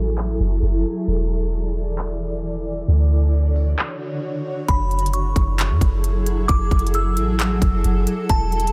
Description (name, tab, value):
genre	hip hop, atmospheric cloud-rap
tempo	133 BPM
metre	4/4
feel	half-time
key	F# minor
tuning	A4 = 440 Hz
part	granular cloud pad	sustained chords	0.0-8.7 s	D3 to D5	-28 LUFS	equal	built-in reverb, sidechain pumping
part	soft 808-style bass	bass	0.0-8.7 s	E1 to F#2	-22 LUFS	equal	none
part	trap drum kit	drums	0.2-8.7 s	handclaps, hi-hat, kick drum	-23 LUFS	equal	none
part	glassy synth bell	melody	4.7-8.7 s	A5 to E6	-28 LUFS	equal	chorus, phaser, low-pass filter, tape echo
room	little or no reverb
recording	low-pass filter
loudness	-20 LUFS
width	mono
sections	0.0-4.7 A section; 4.7-8.7 B section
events	filter sweep 0.0-4.7; break 3.8-4.7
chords	0.0 F#m9; 1.1 E7sus4; 2.9 Dmaj7; 4.7 F#m9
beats	0.17 0.62 | 1.08 1.53 1.98 2.43 | 2.88 3.33 3.78 4.23 | 4.68 5.14 5.59 6.04 | 6.49 6.94 7.39 7.84 | 8.29